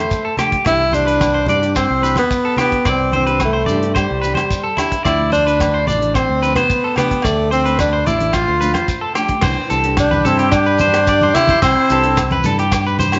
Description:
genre	highlife guitar band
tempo	109 BPM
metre	4/4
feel	straight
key	C major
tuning	A4 = 440 Hz
part	breathy tenor saxophone	melody	0.0-12.4 s	G3 to F4	-19 LUFS	equal	none
part	electric guitar at the edge of break-up	arpeggios	0.0-13.2 s	E4 to D5	-22 LUFS	equal	slapback echo
part	tight funk drum kit	drums	0.1-13.2 s	crash cymbal, hi-hat, kick drum, rim click	-26 LUFS	equal	none
part	shekere	percussion	0.1-13.2 s	none	-31 LUFS	equal	none
part	nylon-string guitar	accompaniment	0.4-13.2 s	E3 to A4	-30 LUFS	equal	none
part	agogo bells	percussion	0.4-13.2 s	none	-31 LUFS	equal	none
part	congas	percussion	0.4-13.1 s	none	-27 LUFS	equal	none
part	modern bright fingered electric bass	bass	0.7-13.2 s	A1 to G2	-23 LUFS	equal	none
part	warm oboe	second line	10.0-12.4 s	E4 to G4	-24 LUFS	equal	none
room	moderate echo chamber reverb, RT60 1.9 s, studio reverb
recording	nothing above 7.7 kHz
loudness	-16 LUFS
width	mono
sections	0.0-9.4 A section; 9.4-13.2 B section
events	none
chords	0.0 Dm; 0.7 Cadd9; 5.0 Dm; 9.4 Cadd9

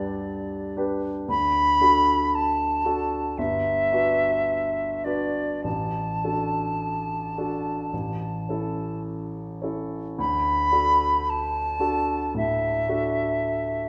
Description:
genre	classical, romantic duo for flute and grand piano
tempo	50-58 BPM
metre	4/4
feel	rubato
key	D major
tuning	A4 = 440 Hz
part	silver concert flute	melody	0.0-13.9 s	D5 to B5	-26 LUFS	equal	none
part	warm concert grand piano	accompaniment	0.0-13.9 s	G1 to B4	-31 LUFS	equal	none
room	moderate recital hall reverb, RT60 1.6 s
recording	none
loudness	-25 LUFS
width	mono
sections	0.0-13.9 A section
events	none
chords	0.0 G/D; 1.3 D; 3.4 Gmaj7; 5.7 D/A; 7.9 A; 10.2 D

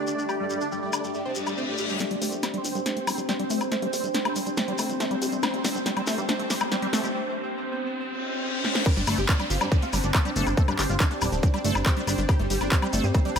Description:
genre	psychedelic trance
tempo	140 BPM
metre	4/4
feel	straight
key	unclear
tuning	A4 = 439 Hz
part	dense compressed supersaw	melody	0.0-2.0, 8.9-13.4 s	G3 to Bb4	-32 LUFS	right 1 dB	phaser, sidechain pumping, dub echo
part	pulsing gated texture	sustained chords	0.0-13.4 s	A3 to D5	-31 LUFS	right 1 dB	chorus, built-in reverb, sidechain pumping
part	granular cloud pad	texture	0.0-13.4 s	D4 to G5	-35 LUFS	equal	built-in reverb, sidechain pumping
part	shekere	percussion	0.1-13.4 s	none	-36 LUFS	left 2 dB	none
part	techno drum kit	drums	0.3-13.4 s	crash cymbal, handclaps, hi-hat, snare drum, woodblock	-29 LUFS	left 2 dB	overdrive
part	reverse cymbal, riser and downlifter	sound effects	1.3-12.3 s	none	-34 LUFS	left 1 dB	none
part	liquid acid bass	riff	2.0-13.4 s	G3 to G4	-31 LUFS	moving between left 4 dB and right 4 dB	chorus, auto-pan, sidechain pumping, dub echo
part	plucky analog bass	bass	2.1-13.4 s	D1 to G2	-30 LUFS	equal	tube saturation, high-pass filter
part	electronic kick drum	drums	8.9-13.2 s	none	-22 LUFS	equal	none
room	moderate lush hall reverb, RT60 2.0 s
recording	none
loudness	-23 LUFS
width	side -7 dB against mid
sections	0.0-2.0 A section; 2.0-8.9 B section; 8.9-13.4 C section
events	reverse cymbal 1.3-2.0, 8.0-8.9; build-up 2.0-8.9; drum fill 2.0-7.1, 8.6; riser 2.0-8.9; filter sweep on acid bass 2.0-8.9; break 7.1-8.9; drop 8.9-13.4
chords	0.0 G5

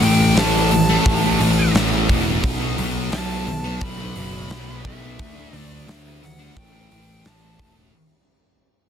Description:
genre	rock, shoegaze and dream pop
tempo	87 BPM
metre	4/4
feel	straight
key	unclear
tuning	A4 = 440 Hz
part	fuzz lead guitar	melody	0.0-7.7 s	E5 to B5	-26 LUFS	right 1 dB	distortion, slapback echo
part	thick fuzz guitar	riff	0.0-7.9 s	A2 to D4	-21 LUFS	left 1 dB	distortion, wide subtle chorus
part	fuzz picked electric bass	bass	0.0-7.9 s	E1 to D2	-23 LUFS	equal	overdrive
part	huge arena drum kit	drums	0.0-7.8 s	hi-hat, kick drum, snare drum	-23 LUFS	equal	none
room	little or no reverb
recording	dense, heavily limited modern master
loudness	-16 LUFS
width	side -8 dB against mid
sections	0.0-7.9 A section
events	fade-out 0.0-7.9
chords	0.0 A5; 2.4 B5; 5.2 D5; 6.6 A5

